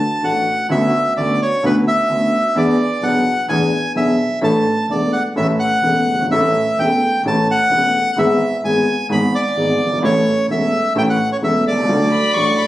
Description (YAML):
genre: tango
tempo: 129 BPM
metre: 4/4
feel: rubato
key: unclear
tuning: A4 = 440 Hz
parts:
  - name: bandoneon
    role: melody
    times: 0.0-12.7 s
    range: B4 to B5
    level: -17 LUFS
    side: equal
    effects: none
  - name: warm concert grand piano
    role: accompaniment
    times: 0.2-12.6 s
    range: E1 to A4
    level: -18 LUFS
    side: equal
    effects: none
  - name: clear double bass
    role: bass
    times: 0.2-12.6 s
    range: E1 to E2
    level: -24 LUFS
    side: right 1 dB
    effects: none
  - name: warm violin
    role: second line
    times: 12.1-12.7 s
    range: B5 to C#6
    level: -18 LUFS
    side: left 3 dB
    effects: none
room: moderate large studio reverb, RT60 0.9 s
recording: recorded on a phone in the room, club reverb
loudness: -14 LUFS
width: side -15 dB against mid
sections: 0.0-12.7 A section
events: none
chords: 0.0 Dadd9; 0.7 Bmadd9/D; 2.6 E7; 4.4 Asus4; 5.4 A; 8.2 E/G#; 10.0 A; 11.9 D